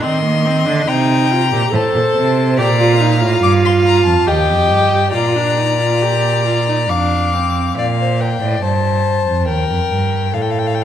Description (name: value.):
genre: classical, baroque-style fugue for string quartet.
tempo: 70 BPM.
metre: 3/4.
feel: straight.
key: Bb major.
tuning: A4 = 441 Hz.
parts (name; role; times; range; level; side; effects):
warm violin; melody; 0.0-10.8 s; F5 to D6; -20 LUFS; left 9 dB; none.
dark violin; second line; 0.0-10.8 s; A4 to G5; -20 LUFS; left 3 dB; none.
rich viola; accompaniment; 0.0-7.8 s; Bb3 to A4; -18 LUFS; right 2 dB; none.
rich cello; bass; 0.0-10.8 s; Eb2 to Eb3; -17 LUFS; right 3 dB; none.
room: moderate scoring stage reverb, RT60 2.1 s.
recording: none.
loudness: -12 LUFS.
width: side -10 dB against mid.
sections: 0.0-7.8 A section; 7.8-10.8 B section.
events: none.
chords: 0.0 Cm; 1.7 Am; 2.6 Bb; 4.3 Ebadd9; 5.1 Bb; 6.9 F5; 7.8 Bb5; 9.5 Eb; 10.3 F/A.